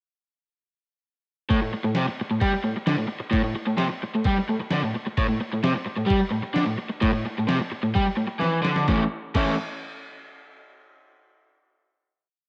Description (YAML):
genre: garage rock duo or trio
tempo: 130 BPM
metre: 4/4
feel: straight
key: unclear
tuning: A4 = 440 Hz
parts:
  - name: crunchy overdriven guitar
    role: riff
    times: 1.5-9.5 s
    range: A2 to E4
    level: -26 LUFS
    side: equal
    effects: cassette tape
  - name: lo-fi sampler-style drum kit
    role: drums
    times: 1.5-9.5 s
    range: crash cymbal, kick drum, snare drum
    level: -31 LUFS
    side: equal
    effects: cassette tape
room: light reverb, digital ambience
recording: home recording on cassette, nothing above 10.7 kHz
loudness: -25 LUFS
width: mono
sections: 1.5-8.9 riff; 8.9-10.7 final chord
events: drum fill 8.4-8.9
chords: 1.5 A5; 8.9 A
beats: | 1.50 1.96 2.42 2.87 | 3.33 3.79 4.25 4.71 | 5.18 5.64 6.10 6.56 | 7.03 7.49 7.96 8.42 | 8.88 9.34